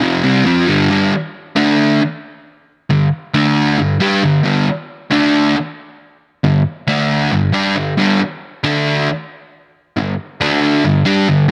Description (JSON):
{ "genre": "rock", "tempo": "136 BPM", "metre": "4/4", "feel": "straight", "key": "unclear", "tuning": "A4 = 440 Hz", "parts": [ { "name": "fuzz guitar", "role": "solo", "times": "0.0-11.5 s", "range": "F2 to G4", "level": "-15 LUFS", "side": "equal", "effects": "distortion" } ], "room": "light reverb, digital ambience", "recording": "none", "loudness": "-15 LUFS", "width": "mono", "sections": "0.9-11.5 A section", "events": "none", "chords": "0.0 G5; 1.6 D5; 2.9 G5; 3.3 D5; 3.8 G5; 5.1 D5; 6.4 G5; 6.9 D5; 7.3 G5; 8.6 D5; 10.0 G5; 10.4 D5; 10.8 G5" }